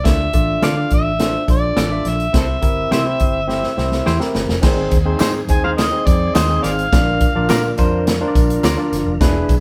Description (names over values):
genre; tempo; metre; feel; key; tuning
uptempo 1960s-style soul; 105 BPM; 4/4; straight; unclear; A4 = 440 Hz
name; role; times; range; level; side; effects
overdriven harmonica; melody; 0.0-7.7 s; A4 to Ab5; -23 LUFS; equal; none
barky tine electric piano; accompaniment; 0.0-9.5 s; C4 to E5; -24 LUFS; equal; none
vintage muted fingered electric bass; bass; 0.0-9.6 s; E1 to D3; -24 LUFS; equal; none
natural country drum kit; drums; 0.1-9.6 s; crash cymbal, hi-hat, kick drum, snare drum; -20 LUFS; equal; none
semi-hollow electric guitar; stabs; 0.6-8.8 s; Eb4 to D5; -25 LUFS; equal; none
tonewheel organ; sustained chords; 4.6-9.6 s; D3 to Ab4; -31 LUFS; equal; none
tambourine and handclaps; percussion; 4.6-9.6 s; none; -35 LUFS; equal; none
room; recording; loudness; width
moderate stone room reverb, RT60 1.0 s; band playing live in one room; -17 LUFS; mono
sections
0.0-4.6 A section; 4.6-9.6 B section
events
drum fill 3.5-4.6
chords
0.0 Dm; 2.3 C; 4.6 Ab; 6.9 Bb